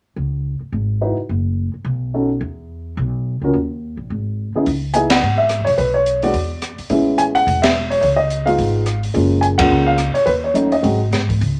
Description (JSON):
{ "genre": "jazz piano trio", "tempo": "214 BPM", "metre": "4/4", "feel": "swing 59% on 8ths", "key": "C# minor", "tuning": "A4 = 443 Hz", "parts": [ { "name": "upright bass", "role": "bass", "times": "0.2-11.6 s", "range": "E1 to G#2", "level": "-24 LUFS", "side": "equal", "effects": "none" }, { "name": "dark upright piano", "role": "melody", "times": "1.0-11.2 s", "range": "C#3 to G#5", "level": "-18 LUFS", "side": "equal", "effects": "none" }, { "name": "open jazz drum kit", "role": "drums", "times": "4.7-11.5 s", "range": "hi-hat, kick drum, ride cymbal, rim click, snare drum", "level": "-25 LUFS", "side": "equal", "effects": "none" } ], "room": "moderate club reverb, RT60 0.5 s", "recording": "none", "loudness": "-18 LUFS", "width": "mono", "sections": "0.2-4.7 A section; 4.7-11.6 B section", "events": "band accent 5.1, 7.6, 9.6", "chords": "0.2 C#5; 1.3 N.C.; 1.9 B7; 2.4 E5; 3.5 D#5; 4.1 G#5; 4.7 C#m; 5.8 Bm; 6.3 Dsus2/E; 6.9 Amaj7; 8.0 C#7; 9.1 F#maj7; 10.3 D#m7b5; 10.8 G#7" }